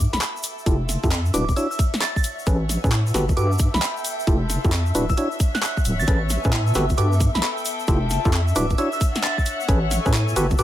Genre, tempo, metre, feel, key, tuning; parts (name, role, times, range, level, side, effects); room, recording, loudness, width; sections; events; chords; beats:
UK garage, two-step garage; 133 BPM; 4/4; swing 65% on 16ths; A4 = 439 Hz
soft string machine; sustained chords; 0.0-10.6 s; E5; -33 LUFS; equal; phaser, ensemble chorus, sidechain pumping
deep soft wobble bass; bass; 0.0-10.6 s; D1 to A2; -22 LUFS; equal; chorus
egg shaker; percussion; 0.0-10.6 s; -34 LUFS; left 2 dB
warm studio string section; texture; 0.0-10.6 s; B3 to G#5; -33 LUFS; left 4 dB; sidechain pumping
glassy synth bell; melody; 0.1-10.6 s; B5 to A6; -29 LUFS; right 2 dB; chorus, ping-pong delay
garage drum kit; drums; 0.1-10.6 s; handclaps, hi-hat, snare drum; -26 LUFS; equal; overdrive
percussive organ stab; stabs; 0.7-10.6 s; C#4 to C#5; -26 LUFS; equal; chorus, ping-pong delay
electronic kick drum; drums; 0.7-10.6 s; -21 LUFS; equal; overdrive
digital ambience; -19 LUFS; side -13 dB against mid
0.0-10.6 A section
fade-in on string section 0.0-10.6; filter sweep on synth stab 0.0-10.6
0.0 Gadd9; 0.7 Fmaj9; 1.3 Dmaj9; 2.5 Amaj9; 3.1 Gmaj9; 4.3 Fmaj9; 4.9 Dmaj9; 6.1 Amaj9; 6.8 Gmaj9; 7.9 Fmaj9; 8.6 Dmaj9; 9.7 Amaj9
0.21 | 0.66 1.11 1.56 2.02 | 2.47 2.92 3.37 3.82 | 4.27 4.72 5.17 5.62 | 6.08 6.53 6.98 7.43 | 7.88 8.33 8.78 9.23 | 9.69 10.14 10.59